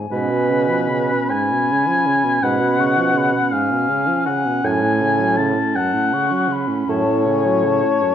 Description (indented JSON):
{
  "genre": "classical, slow romantic movement for wind quintet",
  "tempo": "48-55 BPM (dotted quarters)",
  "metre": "12/8",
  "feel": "rubato",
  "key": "F# minor",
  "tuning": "A4 = 440 Hz",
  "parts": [
    { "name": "mellow hollow silver concert flute", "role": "melody", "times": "0.0-8.1 s", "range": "G#5 to C#6", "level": "-27 LUFS", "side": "left 5 dB", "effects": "none" },
    { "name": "clear French horn", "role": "accompaniment", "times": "0.0-8.1 s", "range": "F#2 to F#3", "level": "-25 LUFS", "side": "equal", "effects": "none" },
    { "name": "warm oboe", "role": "second line", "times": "0.1-8.1 s", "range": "B4 to A5", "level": "-19 LUFS", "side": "left 4 dB", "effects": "none" },
    { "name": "bright clarinet", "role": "accompaniment", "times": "0.1-8.1 s", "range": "C#4", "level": "-23 LUFS", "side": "right 6 dB", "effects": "none" },
    { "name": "mellow bassoon", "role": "bass", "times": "0.1-7.8 s", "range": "A2 to B2", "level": "-21 LUFS", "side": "right 3 dB", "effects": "none" }
  ],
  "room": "moderate recital hall reverb, RT60 1.3 s",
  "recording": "worn, warbling old tape, cassette tape, warbly pitch drift",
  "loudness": "-16 LUFS",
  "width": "side -9 dB against mid",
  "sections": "0.0-8.1 A section",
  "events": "none",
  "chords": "0.1 C#7/G#; 4.6 F#m",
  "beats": "| 0.12 1.32 2.43 3.53 | 4.64 5.75 6.89 8.04"
}